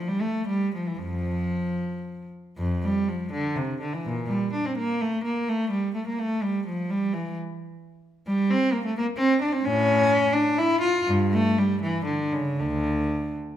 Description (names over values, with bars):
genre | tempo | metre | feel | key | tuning
classical, baroque-style suite movement for unaccompanied cello | 69-89 BPM (dotted quarters) | 6/8 | rubato | F major, D minor from 8.3 s | A4 = 444 Hz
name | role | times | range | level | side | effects
rich cello | solo | 0.0-13.4 s | D2 to F4 | -23 LUFS | equal | none
room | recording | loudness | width
moderate recital hall reverb, RT60 1.4 s | minimal, uncompressed stereo recording | -23 LUFS | side -11 dB against mid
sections
0.0-2.6 A section; 2.6-13.6 B section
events
none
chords
none